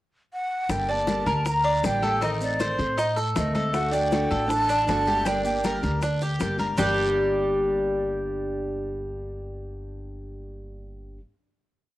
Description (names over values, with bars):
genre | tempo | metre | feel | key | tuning
latin, Cuban son and guajira | 158 BPM | 4/4 | straight | G harmonic minor | A4 = 440 Hz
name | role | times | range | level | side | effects
breathy jazz flute | melody | 0.3-5.8 s | D5 to Bb5 | -26 LUFS | right 1 dB | cassette tape, plate reverb
picked steel-string acoustic guitar | accompaniment | 0.7-11.2 s | G2 to G4 | -32 LUFS | left 2 dB | cassette tape, plate reverb
upright bass | bass | 0.7-11.2 s | G1 to A2 | -31 LUFS | equal | none
bongos | percussion | 0.7-6.9 s | none | -32 LUFS | left 5 dB | none
congas | percussion | 0.7-6.9 s | none | -34 LUFS | left 2 dB | none
guiro | percussion | 0.7-6.9 s | none | -42 LUFS | left 3 dB | none
maracas | percussion | 0.7-6.9 s | none | -44 LUFS | right 2 dB | none
Cuban tres | arpeggios | 0.9-11.2 s | G3 to D5 | -26 LUFS | equal | cassette tape, plate reverb
nylon-string guitar | second line | 3.4-5.8 s | A3 to D4 | -32 LUFS | right 2 dB | cassette tape, plate reverb, tape echo
room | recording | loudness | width
moderate studio reverb, RT60 0.6 s | home recording on cassette | -22 LUFS | side -15 dB against mid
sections
0.0-0.7 pickup bar; 0.7-6.8 A section; 6.8-9.8 final chord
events
none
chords
0.0 N.C.; 0.7 Gm; 2.2 Adim; 3.7 D; 5.3 Gm